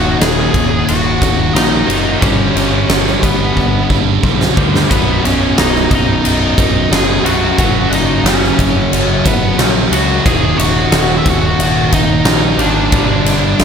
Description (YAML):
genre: quiet-loud alternative rock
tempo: 90 BPM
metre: 4/4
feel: straight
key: B major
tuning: A4 = 439 Hz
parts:
  - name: octave-fuzz lead guitar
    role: melody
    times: 0.0-13.6 s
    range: B3 to G#5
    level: -18 LUFS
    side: equal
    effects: distortion, slapback echo, digital delay
  - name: biting overdriven guitar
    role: riff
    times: 0.0-13.6 s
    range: B1 to G3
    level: -20 LUFS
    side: right 1 dB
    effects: slapback echo
  - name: high-gain distorted guitar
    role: riff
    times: 0.0-13.6 s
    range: B1 to G3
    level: -19 LUFS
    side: right 11 dB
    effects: distortion
  - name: overdriven semi-hollow guitar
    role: riff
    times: 0.0-13.6 s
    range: B1 to G3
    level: -20 LUFS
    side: left 8 dB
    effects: slapback echo
  - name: growling picked electric bass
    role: bass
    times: 0.0-13.6 s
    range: B0 to D2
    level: -19 LUFS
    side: equal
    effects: overdrive
  - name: big rock drum kit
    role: drums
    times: 0.2-13.6 s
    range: kick drum, ride cymbal, snare drum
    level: -14 LUFS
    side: equal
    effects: none
room: light reverb, small room ambience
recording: none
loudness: -10 LUFS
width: side -7 dB against mid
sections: 0.0-4.9 A section; 4.9-13.6 A section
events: drum fill 3.6-4.9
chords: 0.0 D#m; 2.2 G; 4.9 B; 7.6 F#5; 10.3 D#m; 12.9 G5